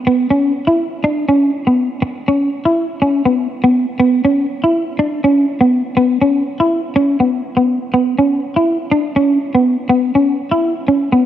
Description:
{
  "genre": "highlife",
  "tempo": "122 BPM",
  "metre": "4/4",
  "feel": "straight",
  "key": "unclear",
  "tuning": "A4 = 445 Hz",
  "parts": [
    { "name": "electric guitar at the edge of break-up", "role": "solo", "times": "0.1-11.3 s", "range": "B3 to E4", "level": "-12 LUFS", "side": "equal", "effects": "analog chorus" }
  ],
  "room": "moderate plate reverb, RT60 3.5 s",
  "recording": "none",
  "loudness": "-13 LUFS",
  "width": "side -11 dB against mid",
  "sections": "0.0-11.3 A section",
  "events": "none",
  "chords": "none"
}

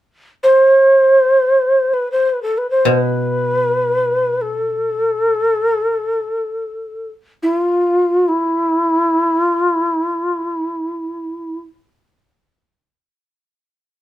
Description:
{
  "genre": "japanese traditional, Japanese chamber music",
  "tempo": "free time",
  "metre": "none",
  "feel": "none",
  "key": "unclear",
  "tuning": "A4 = 441 Hz",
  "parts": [
    { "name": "breathy mellow shakuhachi", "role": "melody", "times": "0.4-11.6 s", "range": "E4 to C5", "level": "-14 LUFS", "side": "equal", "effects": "none" },
    { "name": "koto", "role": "accompaniment", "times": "2.9-6.2 s", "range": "B2", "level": "-21 LUFS", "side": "left 1 dB", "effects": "none" }
  ],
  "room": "light reverb",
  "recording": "minimal, uncompressed stereo recording",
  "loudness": "-14 LUFS",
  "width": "side -14 dB against mid",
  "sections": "0.0-14.0 A section",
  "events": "none",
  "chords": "none"
}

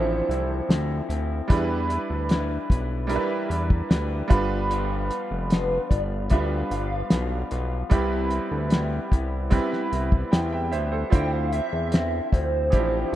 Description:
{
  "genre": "indie pop, bedroom pop",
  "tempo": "75 BPM",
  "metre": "4/4",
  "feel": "straight",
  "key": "D dorian",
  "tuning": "A4 = 441 Hz",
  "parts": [
    { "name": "warbly nostalgic lead", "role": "melody", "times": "0.0-13.2 s", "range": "B4 to G5", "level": "-29 LUFS", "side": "right 1 dB", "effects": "ensemble chorus, tape echo" },
    { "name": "bright upright piano", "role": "accompaniment", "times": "0.0-13.2 s", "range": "E3 to G5", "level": "-28 LUFS", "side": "right 4 dB", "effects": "none" },
    { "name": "electric guitar through a small old amp", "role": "accompaniment", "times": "0.0-13.2 s", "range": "G2 to B4", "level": "-33 LUFS", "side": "left 6 dB", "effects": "wide subtle chorus, vibrato effect" },
    { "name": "fat analog bass", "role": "bass", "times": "0.0-13.2 s", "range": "F1 to E2", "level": "-27 LUFS", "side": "equal", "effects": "none" },
    { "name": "cloth-damped thuddy drum kit", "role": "drums", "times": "0.3-12.9 s", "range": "hi-hat, kick drum, snare drum", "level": "-20 LUFS", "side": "equal", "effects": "none" }
  ],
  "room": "small room reverb",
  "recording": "rough home demo mix",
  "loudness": "-22 LUFS",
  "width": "side -13 dB against mid",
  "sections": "0.0-13.2 A section",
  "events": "upright piano fill 9.9-11.1",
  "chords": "0.0 Dm9; 1.5 Em7; 4.3 G7; 7.9 Cmaj7; 11.1 Dm9"
}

